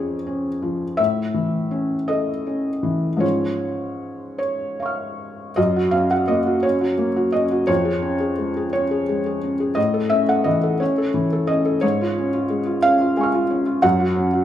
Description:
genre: neoclassical minimalist piano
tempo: 50-60 BPM (dotted quarters)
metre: 6/8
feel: rubato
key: Db major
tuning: A4 = 438 Hz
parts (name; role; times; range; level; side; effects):
- felt-muted upright piano; solo; 0.0-14.4 s; F2 to F6; -18 LUFS; equal; none
room: wet recital hall reverb, RT60 1.4 s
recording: recorded in a church or concert hall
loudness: -18 LUFS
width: side -11 dB against mid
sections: 0.0-5.6 A section; 5.6-14.4 B section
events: none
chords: 0.0 Db/F; 1.0 A; 3.2 Db/Ab; 5.6 Gb; 7.7 Db/F; 9.8 A; 11.8 Db/Ab; 13.8 Gb5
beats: | 0.99 2.08 | 3.23 4.41 | 5.57 6.64 | 7.69 8.73 | 9.77 10.80 | 11.83 12.84 | 13.84

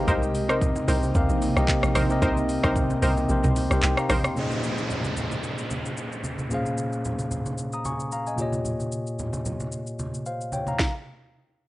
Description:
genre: amapiano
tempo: 112 BPM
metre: 4/4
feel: swing 55% on 16ths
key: unclear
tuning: A4 = 440 Hz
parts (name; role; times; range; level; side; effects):
- tine electric piano; accompaniment; 0.0-10.9 s; Bb2 to Eb6; -27 LUFS; left 1 dB; none
- ethereal airy pad; sustained chords; 0.0-4.3 s; C3 to Eb4; -33 LUFS; right 2 dB; ensemble chorus, built-in reverb, sidechain pumping
- analog pluck; stabs; 0.0-4.3 s; Eb4 to C5; -30 LUFS; equal; chorus, tape echo
- hollow log drum bass; bass; 0.0-4.2 s; Bb1 to Eb2; -26 LUFS; equal; none
- afro-pop drum kit; drums; 0.1-10.9 s; handclaps, hi-hat, kick drum, rim click, shaker, snare drum, toms; -28 LUFS; equal; none
- congas; percussion; 0.1-10.8 s; none; -34 LUFS; right 2 dB; none
- downlifter; sound effects; 4.4-8.7 s; none; -33 LUFS; right 1 dB; none
room: little or no reverb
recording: dry, gritty hardware recording, nothing above 10.7 kHz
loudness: -23 LUFS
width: side -17 dB against mid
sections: 0.0-4.4 A section; 4.4-11.7 B section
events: drop 0.0-4.4; kick muted 3.3-4.4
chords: 0.1 Cm7; 4.4 Bbm11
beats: | 0.08 0.61 1.15 1.69 | 2.22 2.76 3.29 3.83 | 4.37 4.90 5.44 5.97 | 6.51 7.04 7.58 8.12 | 8.65 9.19 9.72 10.26 | 10.79

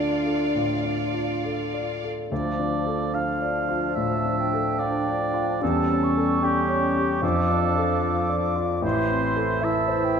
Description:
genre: classical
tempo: 73 BPM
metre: 4/4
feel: rubato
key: D minor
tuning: A4 = 440 Hz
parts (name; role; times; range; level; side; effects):
- clear concert grand piano; melody; 0.0-10.2 s; A1 to G5; -26 LUFS; left 2 dB; none
- warm symphonic violin section; melody; 0.0-2.1 s; F5; -38 LUFS; equal; none
- warm studio violin section; second line; 0.0-2.1 s; F4 to D5; -33 LUFS; left 2 dB; none
- rich symphonic viola section; accompaniment; 0.0-1.8 s; F4; -36 LUFS; right 5 dB; none
- mellow French horn section; sustained chords; 0.0-10.2 s; E3 to E4; -29 LUFS; left 1 dB; none
- clear clarinet; second line; 2.3-10.2 s; C#4 to E4; -32 LUFS; equal; none
- warm oboe; second line; 2.3-10.2 s; G4 to F5; -28 LUFS; right 5 dB; none
- warm bassoon; accompaniment; 2.3-10.2 s; E3 to G3; -30 LUFS; right 3 dB; none
- mellow concert flute; second line; 4.0-10.2 s; G5 to D6; -30 LUFS; equal; none
room: moderate scoring stage reverb, RT60 1.6 s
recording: minimal, uncompressed stereo recording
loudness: -22 LUFS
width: side -6 dB against mid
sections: 0.0-2.3 A section; 2.3-10.2 B section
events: none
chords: 0.0 Dm; 5.6 A7/E; 7.2 Dm/F; 8.8 Am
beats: 0.52 1.43 | 2.31 3.14 3.97 4.79 | 5.61 6.42 7.22 8.03 | 8.84 9.64

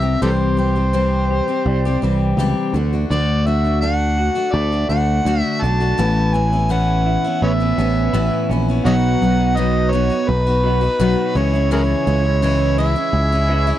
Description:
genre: rock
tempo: 84 BPM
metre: 4/4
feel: straight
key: unclear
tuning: A4 = 440 Hz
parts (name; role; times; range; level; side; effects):
- overdriven harmonica; melody; 0.0-13.8 s; G4 to A5; -21 LUFS; right 1 dB; none
- picked steel-string acoustic guitar; accompaniment; 0.0-13.8 s; A2 to G4; -23 LUFS; left 5 dB; none
- electric guitar through a small old amp; riff; 0.0-13.7 s; A2 to G4; -23 LUFS; right 2 dB; wide subtle chorus
- picked electric bass; bass; 0.0-13.7 s; A1 to D2; -18 LUFS; equal; none
- accordion; sustained chords; 8.9-13.8 s; D#4 to C#5; -32 LUFS; right 5 dB; light tremolo tuning
room: little or no reverb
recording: dry, close 1970s-style studio recording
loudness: -15 LUFS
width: side -12 dB against mid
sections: 0.0-8.9 A section; 8.9-13.8 B section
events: none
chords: 0.0 C; 2.8 D; 6.0 Aadd9; 8.9 B; 11.4 C#m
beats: | 0.23 0.95 1.67 2.39 | 3.12 3.84 4.56 5.28 | 5.99 6.71 7.43 8.14 | 8.86 9.57 10.29 11.00 | 11.71 12.42 13.13

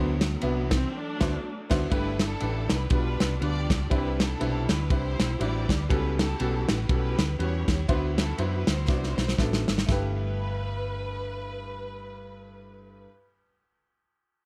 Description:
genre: uptempo gospel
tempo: 120 BPM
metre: 4/4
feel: swing 58% on 8ths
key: G major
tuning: A4 = 440 Hz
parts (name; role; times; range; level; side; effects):
- warm studio string section; melody; 0.0-13.1 s; E3 to D5; -37 LUFS; equal; none
- bright grand piano; accompaniment; 0.0-13.1 s; G2 to D5; -35 LUFS; equal; none
- hollow-body short-scale fingered electric bass; bass; 0.0-13.1 s; G1 to F#2; -32 LUFS; equal; none
- warm soul drum kit; drums; 0.2-10.0 s; crash cymbal, kick drum, ride cymbal, snare drum; -30 LUFS; equal; none
room: studio ambience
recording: none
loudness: -27 LUFS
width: mono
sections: 0.0-1.9 A section; 1.9-9.9 B section; 9.9-13.9 C section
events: band accent 0.9-1.9; drum fill 8.9-9.9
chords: 0.0 D13; 1.9 G69; 2.9 G7/B; 3.9 Cmaj9; 5.9 A13; 7.9 D13; 9.9 G69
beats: 0.42 0.92 1.42 | 1.92 2.41 2.91 3.41 | 3.91 4.40 4.90 5.40 | 5.90 6.40 6.90 7.39 | 7.89 8.39 8.89 9.39 | 9.89 10.39 10.89 11.38 | 11.88 12.38 12.88

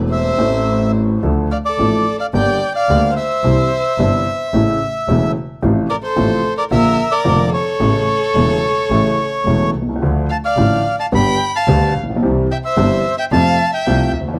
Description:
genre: tango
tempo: 109 BPM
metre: 4/4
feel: rubato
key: D minor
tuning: A4 = 438 Hz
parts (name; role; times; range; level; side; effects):
- warm upright piano; accompaniment; 0.0-14.4 s; E1 to A4; -21 LUFS; equal; none
- clear double bass; bass; 0.0-14.4 s; E1 to F2; -21 LUFS; equal; none
- bandoneon; melody; 0.1-14.1 s; C5 to B5; -21 LUFS; equal; none
- warm violin; second line; 0.1-14.1 s; A4 to G5; -24 LUFS; equal; none
room: studio reverb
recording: dry, close 1970s-style studio recording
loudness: -16 LUFS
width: mono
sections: 0.0-1.2 A section; 1.2-14.4 B section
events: none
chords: 0.0 Am; 1.2 Dm; 2.3 Gm; 3.4 C; 4.5 A; 5.6 F/A; 6.7 Bb; 7.8 A; 10.0 Dm; 11.1 G; 12.2 C; 13.3 F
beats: 0.11 0.67 | 1.23 1.79 2.34 2.89 | 3.44 3.99 4.54 5.08 | 5.63 6.17 6.72 7.26 | 7.81 8.36 8.91 9.46 | 10.02 10.57 11.13 11.68 | 12.23 12.78 13.33 13.87

